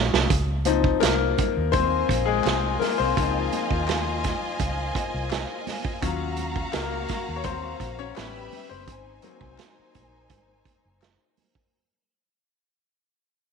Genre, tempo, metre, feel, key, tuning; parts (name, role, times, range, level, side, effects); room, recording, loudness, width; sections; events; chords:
lush 1970s-style soul; 84 BPM; 4/4; straight; Db major; A4 = 440 Hz
bright grand piano; accompaniment; 0.0-11.8 s; Db3 to Db5; -27 LUFS; left 11 dB
vintage muted fingered electric bass; bass; 0.0-11.2 s; Gb1 to Eb2; -29 LUFS; equal
vintage drum kit; drums; 0.1-11.7 s; hi-hat, kick drum, snare drum; -27 LUFS; right 5 dB
congas; percussion; 0.3-11.5 s; -38 LUFS; right 10 dB
group handclap; percussion; 1.0-11.2 s; -42 LUFS; left 10 dB
bright symphonic violin section; second line; 1.7-11.7 s; Eb4 to B5; -33 LUFS; equal
moderate echo chamber reverb, RT60 1.9 s, studio reverb; 1960s-style stereo with parts hard left and right; -22 LUFS; side -5 dB against mid
0.3-11.7 A section
drum fill 0.0-0.3; fade-out 0.3-11.7; grand piano solo 0.3-11.7
0.0 Dbmaj9; 6.0 Ebm9; 8.2 A9; 8.9 Ab9